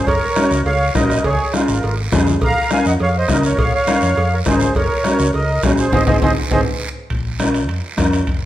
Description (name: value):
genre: latin, cumbia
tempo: 205 BPM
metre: 4/4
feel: straight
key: Bb minor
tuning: A4 = 444 Hz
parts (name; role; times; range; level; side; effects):
- accordion; melody; 0.0-6.6 s; F4 to Bb5; -19 LUFS; right 1 dB; light tremolo tuning
- hollow-body short-scale fingered electric bass; bass; 0.1-8.5 s; F1 to F2; -20 LUFS; equal; none
- bombo; percussion; 0.1-8.4 s; none; -21 LUFS; left 1 dB; none
- congas; percussion; 0.1-8.4 s; none; -24 LUFS; left 4 dB; none
- cowbell and timbales; percussion; 0.1-8.4 s; none; -27 LUFS; right 3 dB; none
- guiro; percussion; 0.1-8.5 s; none; -30 LUFS; right 6 dB; none
- mellow electric guitar; accompaniment; 0.4-8.2 s; C4 to Bb4; -20 LUFS; left 1 dB; none
room: moderate large studio reverb, RT60 1.1 s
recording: none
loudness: -14 LUFS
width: side -13 dB against mid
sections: 0.0-7.1 A section; 7.1-8.5 B section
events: drum fill 5.9-7.1; band accent 5.9-7.1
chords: 0.1 Gb; 1.2 Db; 2.4 Bbm; 4.8 Gb; 5.9 Ab; 7.1 Bbm